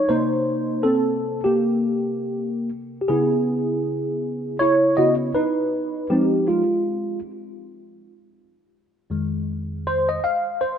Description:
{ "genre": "hip hop", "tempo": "80 BPM", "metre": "4/4", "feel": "swing 57% on 16ths", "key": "unclear", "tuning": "A4 = 439 Hz", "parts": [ { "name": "mellow tine electric piano", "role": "solo", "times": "0.0-10.8 s", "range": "F2 to F5", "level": "-20 LUFS", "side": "equal", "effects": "analog chorus, slapback echo" } ], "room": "moderate plate reverb, RT60 2.7 s", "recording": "rough home demo mix, nothing above 11.0 kHz", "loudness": "-20 LUFS", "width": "side -8 dB against mid", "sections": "0.0-9.1 A section; 9.1-10.8 B section", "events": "tine electric piano solo 0.0-9.1, 9.1-10.8", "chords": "0.1 Cm7; 3.1 Dbm9; 6.1 Fm7", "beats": "| 0.10 0.85 1.60 2.35 | 3.10 3.85 4.60 5.35 | 6.10 6.85 7.60 8.35 | 9.10 9.85 10.60" }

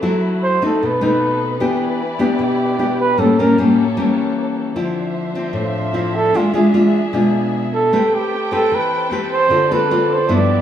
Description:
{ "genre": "bossa nova", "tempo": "152 BPM", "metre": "4/4", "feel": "straight", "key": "A minor", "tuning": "A4 = 440 Hz", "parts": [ { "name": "nylon-string guitar", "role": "accompaniment", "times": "0.0-10.6 s", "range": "G2 to B4", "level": "-16 LUFS", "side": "left 1 dB", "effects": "none" }, { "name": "muted studio violin section", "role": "sustained chords", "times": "0.0-10.6 s", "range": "A3 to G5", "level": "-26 LUFS", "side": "left 2 dB", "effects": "none" }, { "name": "breathy flugelhorn", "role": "melody", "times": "0.4-10.6 s", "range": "F4 to D5", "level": "-18 LUFS", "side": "right 3 dB", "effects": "none" } ], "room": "wet large studio reverb, RT60 0.9 s", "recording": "band playing live in one room", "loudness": "-14 LUFS", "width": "side -10 dB against mid", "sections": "0.0-10.6 A section", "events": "flugelhorn solo 0.0-10.6", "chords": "0.0 F#m7b5; 0.8 B7b9; 1.6 Em7; 3.2 A7b9; 4.8 Dm9; 6.3 E7b9; 7.9 Am9; 9.5 Dm7", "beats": "| 0.02 0.42 0.81 1.21 | 1.60 2.00 2.39 2.79 | 3.18 3.58 3.97 4.37 | 4.76 5.16 5.55 5.95 | 6.34 6.74 7.13 7.53 | 7.92 8.32 8.71 9.11 | 9.50 9.90 10.29" }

